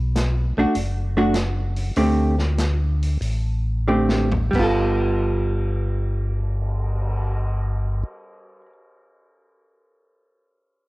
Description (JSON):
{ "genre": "soul jazz organ trio", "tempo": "88-103 BPM", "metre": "4/4", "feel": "swing 69% on 8ths", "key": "G mixolydian", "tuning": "A4 = 440 Hz", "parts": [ { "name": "mellow tonewheel organ", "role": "bass", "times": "0.0-8.0 s", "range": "F#1 to D2", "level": "-22 LUFS", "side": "equal", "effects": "slow rotary speaker" }, { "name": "vintage drum kit", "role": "drums", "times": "0.2-7.2 s", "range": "crash cymbal, cymbal swell, hi-hat, kick drum, snare drum, toms", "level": "-30 LUFS", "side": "equal", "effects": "cassette tape" }, { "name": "vintage hollow-body jazz guitar", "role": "accompaniment", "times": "0.6-8.7 s", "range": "D3 to A4", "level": "-21 LUFS", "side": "right 1 dB", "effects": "cassette tape" } ], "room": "light reverb, small room ambience", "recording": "home recording on cassette", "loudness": "-19 LUFS", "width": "side -20 dB against mid", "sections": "0.0-4.5 A section; 4.5-7.3 B section", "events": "slowing down 0.0-4.5; drum fill 3.9-4.5", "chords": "0.0 Bm7; 2.0 D7sus4; 4.5 G9" }